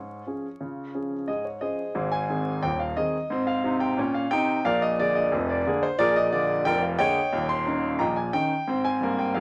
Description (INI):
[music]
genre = ragtime piano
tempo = 89 BPM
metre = 2/4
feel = straight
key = Ab major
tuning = A4 = 440 Hz
[part]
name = warm concert grand piano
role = solo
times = 0.0-9.4 s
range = Eb1 to Db6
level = -26 LUFS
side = equal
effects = none
[sound]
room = moderate club reverb, RT60 0.6 s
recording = vinyl crackle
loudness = -26 LUFS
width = mono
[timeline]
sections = 0.0-2.0 A section; 2.0-9.4 B section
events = none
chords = 0.0 Db; 2.0 Ab; 4.7 Bb7; 7.3 Eb7; 8.7 Ab